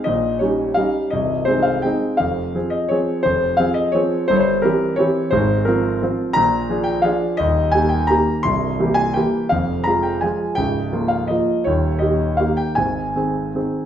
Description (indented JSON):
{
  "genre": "classical, piano waltz",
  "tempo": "151-181 BPM",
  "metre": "3/4",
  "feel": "rubato",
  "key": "unclear",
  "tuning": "A4 = 440 Hz",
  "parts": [
    { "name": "clear concert grand piano", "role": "solo", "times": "0.0-13.9 s", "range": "C1 to C6", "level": "-16 LUFS", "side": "equal", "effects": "none" }
  ],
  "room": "wet recital hall reverb, RT60 1.2 s",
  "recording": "recorded in a church or concert hall",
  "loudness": "-16 LUFS",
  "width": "side -9 dB against mid",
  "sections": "0.0-13.9 A section",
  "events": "none",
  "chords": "0.1 Eb7/Bb; 1.1 Ab/C; 2.2 Fm; 4.3 C7/G; 5.3 Fm/Ab; 6.4 Bb7; 7.4 Eb; 8.5 C7; 9.5 Fm; 10.6 Bbm/Db; 11.7 Eb7; 12.8 Ab",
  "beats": "| 0.06 0.41 0.77 | 1.13 1.48 1.84 | 2.19 2.54 2.91 | 3.25 3.59 3.94 | 4.29 4.63 4.98 | 5.33 5.66 6.01 | 6.36 6.69 7.04 | 7.39 7.74 8.10 | 8.46 8.80 9.16 | 9.52 9.87 10.23 | 10.58 10.93 11.30 | 11.66 12.01 12.39 | 12.78 13.16 13.56"
}